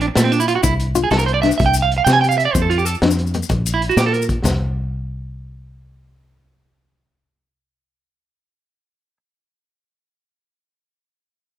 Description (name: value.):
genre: highlife guitar band.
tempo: 126 BPM (dotted quarters).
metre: 12/8.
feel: straight.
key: C mixolydian.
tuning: A4 = 439 Hz.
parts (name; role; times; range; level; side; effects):
electric guitar at the edge of break-up; arpeggios; 0.0-4.2 s; A3 to Ab5; -17 LUFS; right 5 dB; slapback echo, plate reverb.
fingered electric bass; bass; 0.0-9.2 s; Bb1 to C3; -20 LUFS; left 1 dB; none.
crunchy breakbeat drum kit; drums; 0.0-4.5 s; hi-hat, kick drum, snare drum, toms; -23 LUFS; equal; none.
maracas; percussion; 0.2-4.6 s; none; -28 LUFS; left 10 dB; none.
fingerpicked steel-string acoustic guitar; accompaniment; 0.6-4.5 s; C4 to F4; -22 LUFS; left 6 dB; none.
room: light reverb.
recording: none.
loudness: -15 LUFS.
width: side -12 dB against mid.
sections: 0.0-4.4 A section; 4.4-8.3 B section.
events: clean electric guitar solo 0.0-4.4.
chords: 0.0 Bbmaj9#11; 0.6 Cadd9; 2.5 F5; 3.5 N.C..